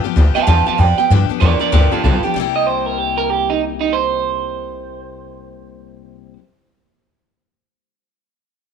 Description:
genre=rockabilly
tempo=191 BPM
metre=4/4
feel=swing 62% on 8ths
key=C mixolydian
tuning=A4 = 441 Hz
part: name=picked steel-string acoustic guitar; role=accompaniment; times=0.0-6.4 s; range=G2 to G4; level=-22 LUFS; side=left 16 dB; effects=none
part: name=upright bass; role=bass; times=0.0-6.3 s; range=B1 to G2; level=-16 LUFS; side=left 1 dB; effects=none
part: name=electric guitar through a small old amp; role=melody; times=0.3-6.3 s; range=Eb4 to A5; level=-18 LUFS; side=right 11 dB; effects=tape echo
room=small room reverb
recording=1960s-style stereo with parts hard left and right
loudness=-13 LUFS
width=side -7 dB against mid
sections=0.0-1.1 A section; 1.1-2.4 B section; 2.4-4.9 C section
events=none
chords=0.0 G7; 2.4 C7

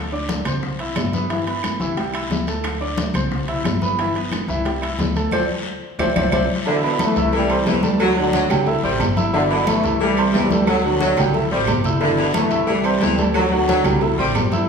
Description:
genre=latin, salsa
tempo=179 BPM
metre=4/4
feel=straight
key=unclear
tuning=A4 = 440 Hz
part: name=warm baby grand piano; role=accompaniment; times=0.0-14.7 s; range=E3 to E6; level=-23 LUFS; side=right 1 dB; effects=none
part: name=upright bass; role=bass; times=0.0-14.7 s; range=G1 to D2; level=-26 LUFS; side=left 1 dB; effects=none
part: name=bongos and cowbell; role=percussion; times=0.1-14.7 s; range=none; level=-29 LUFS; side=left 2 dB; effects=none
part: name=congas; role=percussion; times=0.1-14.7 s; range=none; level=-26 LUFS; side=left 1 dB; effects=none
part: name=guiro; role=percussion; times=0.3-14.7 s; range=none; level=-33 LUFS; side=left 4 dB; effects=none
part: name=timbales and agogo bells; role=percussion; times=0.3-14.5 s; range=none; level=-27 LUFS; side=right 4 dB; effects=none
part: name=claves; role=percussion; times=0.5-14.5 s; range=none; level=-35 LUFS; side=right 4 dB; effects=none
part: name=warm trombone section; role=melody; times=6.7-14.0 s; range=B2 to A3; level=-20 LUFS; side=equal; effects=none
part: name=clear saxophone section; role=second line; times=6.7-14.5 s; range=D3 to G3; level=-24 LUFS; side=left 1 dB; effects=none
room=wet recital hall reverb, RT60 1.4 s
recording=recorded in a church or concert hall, small room ambience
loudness=-17 LUFS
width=side -6 dB against mid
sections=0.0-6.7 A section; 6.7-14.7 B section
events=drum fill 5.3-6.7, 11.3-12.0; band accent 5.3-6.7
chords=0.0 D5; 0.6 G6; 2.0 Cadd9; 2.6 D5; 3.3 G6; 4.7 Cadd9; 5.3 D5; 6.0 Cadd9; 6.7 Cmaj13; 7.3 Cadd9; 8.0 D7; 8.7 C; 9.3 G6; 10.0 Cadd9; 10.7 D7; 11.3 C; 12.0 G6; 12.7 Cadd9; 13.4 D7; 14.0 C

